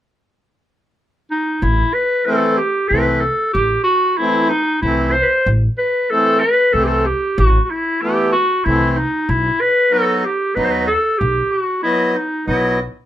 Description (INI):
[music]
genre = klezmer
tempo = 94 BPM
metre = 3/4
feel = straight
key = A dorian sharp4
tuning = A4 = 439 Hz
[part]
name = bright clarinet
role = melody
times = 1.3-12.8 s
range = D#4 to C5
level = -16 LUFS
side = equal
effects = none
[part]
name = upright bass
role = bass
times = 1.6-12.9 s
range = A1 to D#2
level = -18 LUFS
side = equal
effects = none
[part]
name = accordion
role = accompaniment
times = 2.3-12.8 s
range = E3 to D#5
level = -19 LUFS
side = equal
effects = none
[sound]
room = moderate studio reverb, RT60 0.5 s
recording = minimal, uncompressed stereo recording, lossy compression artefacts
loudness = -14 LUFS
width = side -12 dB against mid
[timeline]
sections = 0.0-1.6 A section; 1.6-13.1 B section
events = none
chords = 0.0 N.C.; 1.6 Am; 9.3 B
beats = 0.35 0.99 | 1.63 2.27 2.91 | 3.55 4.19 4.83 | 5.46 6.10 6.74 | 7.38 8.02 8.66 | 9.29 9.93 10.57 | 11.21 11.85 12.49